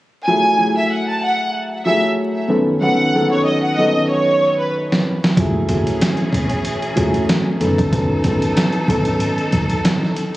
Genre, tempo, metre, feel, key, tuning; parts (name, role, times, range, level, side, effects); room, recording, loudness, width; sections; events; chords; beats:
hip hop, boom-bap hip-hop; 94 BPM; 4/4; swing 56% on 16ths; A4 = 440 Hz
warm studio violin section; melody; 0.3-4.7 s; B4 to A5; -17 LUFS; right 1 dB; high-pass filter, low-pass filter, digital delay
dark upright piano; accompaniment; 0.3-10.2 s; F#2 to A4; -19 LUFS; equal; cassette tape, high-pass filter, low-pass filter
trip hop sampler-style drum kit; drums; 4.9-10.4 s; hi-hat, kick drum, snare drum; -18 LUFS; equal; vintage 12-bit sampler grit
rich studio string section; stabs; 5.4-10.4 s; E3 to A4; -24 LUFS; equal; high-pass filter, low-pass filter, digital delay
upright bass; bass; 5.4-9.2 s; E1 to G#1; -24 LUFS; equal
little or no reverb; recorded on a phone in the room, club reverb, vinyl crackle, compression; -15 LUFS; side -17 dB against mid
0.3-5.4 A section; 5.4-10.4 B section
drum fill 4.1-5.4
0.3 F#m9; 2.5 B9/F#; 5.4 F#m9; 7.6 B9/F#
| 0.27 0.90 1.54 2.18 | 2.82 3.46 4.10 4.73 | 5.37 6.01 6.65 7.29 | 7.93 8.56 9.20 9.84